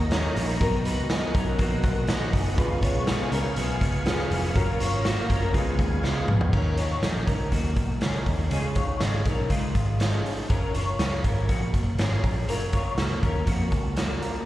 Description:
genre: jangly indie pop.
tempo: 121 BPM.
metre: 4/4.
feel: straight.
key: F# major.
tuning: A4 = 440 Hz.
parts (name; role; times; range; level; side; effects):
picked steel-string acoustic guitar; accompaniment; 0.0-14.5 s; B2 to A#4; -33 LUFS; right 5 dB; none.
reed electric piano; accompaniment; 0.0-6.6 s; B3 to B4; -35 LUFS; right 2 dB; slapback echo.
ensemble organ-string; sustained chords; 0.0-6.5 s; F#4 to C#6; -35 LUFS; equal; ensemble chorus.
electric guitar through a small old amp; arpeggios; 0.0-14.4 s; G#3 to C#5; -31 LUFS; left 4 dB; ensemble chorus, tape echo, slapback echo.
vintage muted picked electric bass; bass; 0.0-14.1 s; E#1 to E#2; -27 LUFS; equal; none.
raw garage drum kit; drums; 0.1-14.3 s; crash cymbal, hi-hat, kick drum, snare drum, toms; -26 LUFS; equal; none.
room: small room reverb.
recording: live gig heard through the venue's PA, recital hall reverb.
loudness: -22 LUFS.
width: side -15 dB against mid.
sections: 0.0-6.5 A section; 6.5-14.5 B section.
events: drum fill 6.0-6.5.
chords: 0.0 D#m7; 0.6 Bmaj7; 2.6 C#7; 4.6 F#maj7; 5.5 C#7; 6.5 D#m7; 8.5 C#add9; 10.5 F#maj7.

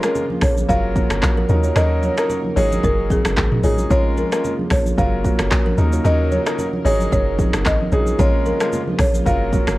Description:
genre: afrobeats.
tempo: 112 BPM.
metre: 4/4.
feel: swing 55% on 16ths.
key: Bb minor.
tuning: A4 = 440 Hz.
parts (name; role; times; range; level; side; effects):
folk marimba with medium mallets; melody; 0.0-9.7 s; Ab4 to F5; -23 LUFS; equal; none.
clear grand piano; accompaniment; 0.0-9.8 s; Gb3 to Bb4; -24 LUFS; left 1 dB; none.
lush unison pad; sustained chords; 0.0-9.8 s; Db3 to Bb4; -31 LUFS; equal; none.
afro-pop drum kit; drums; 0.0-9.8 s; finger snaps, handclaps, hi-hat, kick drum, rim click, shaker, toms; -20 LUFS; equal; none.
kalimba; riff; 0.2-9.6 s; Bb3 to Db5; -27 LUFS; right 4 dB; analog delay.
congas; percussion; 0.2-9.7 s; none; -27 LUFS; equal; none.
deep log drum bass; bass; 0.4-9.8 s; Gb1 to Eb2; -20 LUFS; equal; none.
room: small room ambience.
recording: worn, warbling old tape, cassette tape, warbly pitch drift.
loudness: -16 LUFS.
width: side -18 dB against mid.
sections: 0.0-9.8 A section.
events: none.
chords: 0.0 Bbm7; 0.7 Gbmaj7; 1.5 Ebm7; 2.6 Ab7sus4; 3.9 Bbm7; 5.0 Gbmaj7; 5.8 Ebm7; 6.9 Ab7sus4; 8.2 Bbm7; 9.3 Gbmaj7.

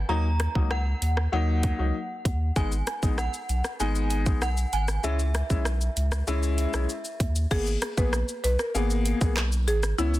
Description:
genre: dancehall.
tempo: 97 BPM.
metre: 4/4.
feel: straight.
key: G# minor.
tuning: A4 = 440 Hz.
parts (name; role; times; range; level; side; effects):
synth chime; second line; 0.0-7.2 s; E5 to A#5; -34 LUFS; right 2 dB; ensemble chorus, tape echo.
warm sub bass; bass; 0.0-10.2 s; G#1 to D#2; -26 LUFS; equal; none.
clear baby grand piano; accompaniment; 0.1-10.1 s; F#3 to G#4; -32 LUFS; left 4 dB; none.
island pop drum kit; drums; 0.4-10.2 s; crash cymbal, handclaps, hi-hat, kick drum, rim click, shaker; -29 LUFS; equal; soft clipping on snare.
buzzing marimba with medium mallets; melody; 7.5-10.2 s; E4 to B4; -30 LUFS; right 1 dB; tape echo.
room: little or no reverb.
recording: dense, heavily limited modern master.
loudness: -24 LUFS.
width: side -16 dB against mid.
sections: 0.0-7.5 A section; 7.5-10.2 B section.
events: none.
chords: 0.1 D#m; 2.6 G#m; 5.0 C#m; 7.5 G#madd9.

